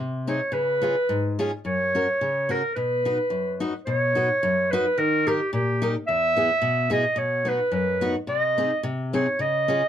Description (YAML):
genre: alpine folk, alpine dance band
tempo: 108 BPM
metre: 2/4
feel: swing 53% on 8ths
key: B major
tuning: A4 = 437 Hz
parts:
  - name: picked steel-string acoustic guitar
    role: accompaniment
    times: 0.0-9.8 s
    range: E2 to B4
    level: -26 LUFS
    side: left 2 dB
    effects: none
  - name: bright clarinet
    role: melody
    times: 0.3-9.9 s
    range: G4 to E5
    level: -22 LUFS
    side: right 1 dB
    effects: none
room: light reverb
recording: none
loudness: -21 LUFS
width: side -10 dB against mid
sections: 0.0-3.9 A section; 3.9-9.9 A section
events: none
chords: 0.0 G#/B#; 0.5 C#7; 1.6 F#; 2.8 B; 5.0 D#; 6.1 E; 7.2 B; 8.3 G#/B#